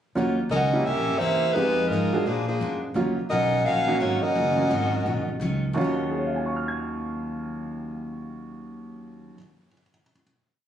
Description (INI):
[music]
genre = jazz, big band swing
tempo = 172 BPM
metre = 4/4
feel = swing 63% on 8ths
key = Eb minor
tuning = A4 = 439 Hz
[part]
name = clear upright piano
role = accompaniment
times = 0.2-10.2 s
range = Eb2 to Ab6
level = -28 LUFS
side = right 4 dB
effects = none
[part]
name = picked steel-string acoustic guitar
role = accompaniment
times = 0.2-9.4 s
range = Bb2 to Ab4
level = -33 LUFS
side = left 2 dB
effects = none
[part]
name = upright bass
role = bass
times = 0.2-9.3 s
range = Eb1 to Bb2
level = -30 LUFS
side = equal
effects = none
[part]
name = mellow saxophone section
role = melody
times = 0.5-5.4 s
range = F3 to F5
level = -23 LUFS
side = equal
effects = plate reverb
[sound]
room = light reverb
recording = recorded on a phone in the room, club reverb, compression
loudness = -22 LUFS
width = side -9 dB against mid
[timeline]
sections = 0.2-5.7 A section; 5.7-8.5 final chord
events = none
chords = 0.2 Ebm9; 0.8 C7b9; 1.5 Fm7b5; 2.2 Bb7b13; 2.9 Ebm9